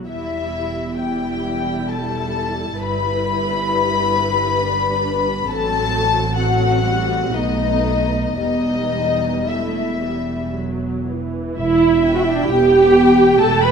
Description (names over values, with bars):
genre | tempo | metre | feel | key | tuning
classical, slow romantic movement for string orchestra | 53-69 BPM | 3/4 | rubato | E minor | A4 = 440 Hz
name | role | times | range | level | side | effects
dark symphonic viola section | accompaniment | 0.0-13.7 s | E3 to B4 | -20 LUFS | right 2 dB | none
warm symphonic cello section | bass | 0.0-13.7 s | E2 to B3 | -24 LUFS | right 1 dB | none
warm symphonic violin section | melody | 0.1-13.7 s | D#5 to B5 | -22 LUFS | left 6 dB | none
dark studio violin section | second line | 0.1-13.7 s | D#4 to B5 | -24 LUFS | left 3 dB | none
warm symphonic double bass section | bass | 0.1-13.7 s | E1 to B1 | -25 LUFS | right 3 dB | none
room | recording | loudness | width
moderate scoring stage reverb, RT60 1.9 s | none | -16 LUFS | side -6 dB against mid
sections
0.0-11.6 A section; 11.6-13.7 A section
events
none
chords
0.1 Em; 2.8 Em/G; 5.5 F#dim/A; 7.3 B7; 8.4 Em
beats
| 0.08 1.00 1.90 | 2.79 3.71 4.61 | 5.49 6.37 7.33 | 8.38 9.49 10.55 | 11.57 12.51 13.40